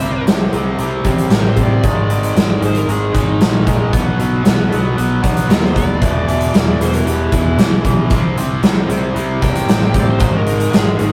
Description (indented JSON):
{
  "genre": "quiet-loud alternative rock",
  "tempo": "115 BPM",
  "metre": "4/4",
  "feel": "straight",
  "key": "unclear",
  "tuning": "A4 = 439 Hz",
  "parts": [
    { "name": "high-gain lead guitar", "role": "melody", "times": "0.0-11.1 s", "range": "Eb4 to G5", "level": "-26 LUFS", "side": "equal", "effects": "distortion" },
    { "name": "electric guitar through a small old amp", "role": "arpeggios", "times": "0.0-11.1 s", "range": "E2 to Ab4", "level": "-30 LUFS", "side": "equal", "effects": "none" },
    { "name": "distorted electric guitar", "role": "riff", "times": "0.0-11.1 s", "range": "E2 to C4", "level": "-22 LUFS", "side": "equal", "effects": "overdrive" },
    { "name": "fingered electric bass", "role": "bass", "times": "0.0-11.1 s", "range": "E1 to D#2", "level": "-21 LUFS", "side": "equal", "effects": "none" },
    { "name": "big rock drum kit", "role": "drums", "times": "0.0-11.1 s", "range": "hi-hat, kick drum, snare drum", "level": "-18 LUFS", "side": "equal", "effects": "none" }
  ],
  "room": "moderate studio ambience, RT60 0.5 s",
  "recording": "rough rehearsal-room recording, tube saturation",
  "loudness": "-15 LUFS",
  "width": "mono",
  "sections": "0.0-11.1 A section",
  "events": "lead electric guitar solo 0.0-11.1",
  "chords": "0.0 C; 1.8 Ab; 3.9 B; 6.0 E; 8.1 C; 10.2 Ab5"
}